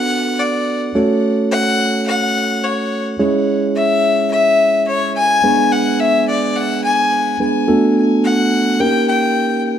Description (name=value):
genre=pop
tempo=107 BPM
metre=4/4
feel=straight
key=F# minor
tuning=A4 = 440 Hz
part: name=rich fiddle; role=melody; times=0.0-9.6 s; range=C#5 to G#5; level=-16 LUFS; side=left 3 dB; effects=digital delay
part: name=mellow tine electric piano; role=accompaniment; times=0.0-9.8 s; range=G#3 to C#5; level=-16 LUFS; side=right 2 dB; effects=none
room=wet small room reverb, RT60 0.6 s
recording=dark, warm production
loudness=-13 LUFS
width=side -9 dB against mid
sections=0.0-9.8 A section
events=none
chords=0.0 Bm7; 1.0 F#m; 3.2 C#m; 5.4 G#dim; 7.7 Bm7; 8.8 D#7